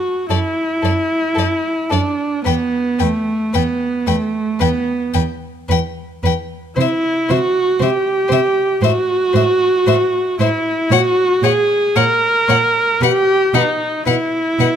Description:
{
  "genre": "classical, slow romantic movement for string quartet",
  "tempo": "57 BPM",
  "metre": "4/4",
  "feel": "rubato",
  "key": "unclear",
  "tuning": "A4 = 437 Hz",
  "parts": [
    { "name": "warm viola", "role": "accompaniment", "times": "0.0-14.8 s", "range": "A3 to A#4", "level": "-16 LUFS", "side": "right 1 dB", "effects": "none" },
    { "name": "warm violin", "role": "melody", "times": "0.3-14.7 s", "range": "D5 to G5", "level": "-21 LUFS", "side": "left 13 dB", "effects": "none" },
    { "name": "warm violin", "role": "second line", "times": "0.3-14.7 s", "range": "A4 to C#5", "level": "-25 LUFS", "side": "left 6 dB", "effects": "none" },
    { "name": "dark cello", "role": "bass", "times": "0.3-14.7 s", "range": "E2 to C3", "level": "-20 LUFS", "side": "right 4 dB", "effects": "none" }
  ],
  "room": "light reverb",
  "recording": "close, detailed microphones",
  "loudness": "-14 LUFS",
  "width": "side -8 dB against mid",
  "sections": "0.0-14.8 A section",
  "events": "none",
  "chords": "0.0 D/F#; 2.5 E5; 6.8 C; 8.8 F#m7/A; 10.9 F#/A#; 13.0 B5"
}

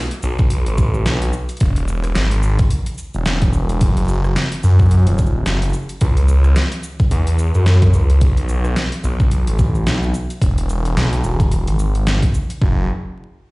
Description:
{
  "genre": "glitch hop",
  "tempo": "109 BPM",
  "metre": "4/4",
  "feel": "swing 58% on 16ths",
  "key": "unclear",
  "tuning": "A4 = 436 Hz",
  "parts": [
    { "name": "dubstep drum kit", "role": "drums", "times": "0.1-12.6 s", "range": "hi-hat, rim click, shaker, snare drum", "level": "-24 LUFS", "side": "equal", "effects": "overdrive, small room ambience" },
    { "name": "phased detuned saw bass", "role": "bass", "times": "0.2-12.9 s", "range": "D#1 to F#2", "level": "-15 LUFS", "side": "equal", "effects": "phaser" },
    { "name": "electronic kick drum", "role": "drums", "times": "0.4-12.7 s", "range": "none", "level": "-15 LUFS", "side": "equal", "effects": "overdrive, small room ambience" }
  ],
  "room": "little or no reverb",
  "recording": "played on a big sound system in a bare room, large studio reverb, vinyl crackle, nothing above 11.0 kHz",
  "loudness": "-14 LUFS",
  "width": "side -24 dB against mid",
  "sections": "0.0-12.6 A section",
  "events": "filter sweep on detuned saw bass 0.0-12.6",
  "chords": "none"
}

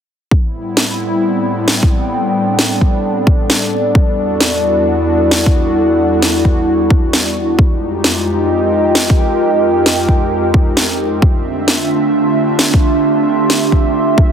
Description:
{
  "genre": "UK garage, two-step garage",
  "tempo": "132 BPM",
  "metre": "4/4",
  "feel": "swing 66% on 16ths",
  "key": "A minor",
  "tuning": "A4 = 440 Hz",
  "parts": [
    { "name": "airy breathy pad", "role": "sustained chords", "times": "0.3-14.3 s", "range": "E2 to E5", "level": "-18 LUFS", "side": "left 1 dB", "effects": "chorus, sidechain pumping" },
    { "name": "electronic kick drum", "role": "drums", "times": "0.3-14.3 s", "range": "none", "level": "-12 LUFS", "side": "equal", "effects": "none" },
    { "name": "warbly tape-like pad", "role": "texture", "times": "1.3-14.3 s", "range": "D4 to C6", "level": "-16 LUFS", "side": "right 1 dB", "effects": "chorus, built-in reverb, sidechain pumping" },
    { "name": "electronic snare drum", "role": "drums", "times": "0.8-13.6 s", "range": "none", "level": "-14 LUFS", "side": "equal", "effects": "none" }
  ],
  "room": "light reverb",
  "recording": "heavily compressed radio sound",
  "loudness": "-11 LUFS",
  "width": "side -8 dB against mid",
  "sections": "0.3-14.3 A section",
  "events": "none",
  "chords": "0.3 Am9; 4.0 Em9; 7.6 Fm9; 11.2 Dm9"
}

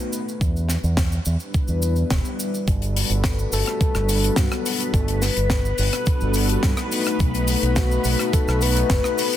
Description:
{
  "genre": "nu-disco, nu disco",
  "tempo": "106 BPM",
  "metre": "4/4",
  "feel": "straight",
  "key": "G major",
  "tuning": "A4 = 440 Hz",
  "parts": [
    { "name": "warm analog pad", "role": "accompaniment", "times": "0.0-9.2 s", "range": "G3 to B4", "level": "-26 LUFS", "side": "left 2 dB", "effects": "chorus, sidechain pumping, tape echo" },
    { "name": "cabasa", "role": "percussion", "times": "0.1-9.4 s", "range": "none", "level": "-34 LUFS", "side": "right 2 dB", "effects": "none" },
    { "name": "fingered electric bass with an envelope filter", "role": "bass", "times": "0.4-9.0 s", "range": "E1 to G2", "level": "-22 LUFS", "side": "equal", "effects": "none" },
    { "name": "electronic kick drum", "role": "drums", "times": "0.4-9.0 s", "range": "none", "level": "-22 LUFS", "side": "equal", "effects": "small room ambience" },
    { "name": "tight funk drum kit", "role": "drums", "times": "0.7-9.4 s", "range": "hi-hat, rim click, snare drum", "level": "-27 LUFS", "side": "left 3 dB", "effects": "small room ambience" },
    { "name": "string machine, full ensemble", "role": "sustained chords", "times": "2.7-9.4 s", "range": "B3 to B4", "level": "-30 LUFS", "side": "equal", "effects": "ensemble chorus, sidechain pumping" },
    { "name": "soft octave-layered synth lead", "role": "melody", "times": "3.5-9.4 s", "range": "F#4 to B4", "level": "-27 LUFS", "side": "left 3 dB", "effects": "chorus, tape echo" }
  ],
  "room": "small room ambience",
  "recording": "dense, heavily limited modern master",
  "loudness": "-19 LUFS",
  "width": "side -11 dB against mid",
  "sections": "0.0-9.4 A section",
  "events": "filter sweep on analog synth pad 0.0-9.4",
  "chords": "0.1 Em7; 2.7 Gmaj9; 6.9 B7"
}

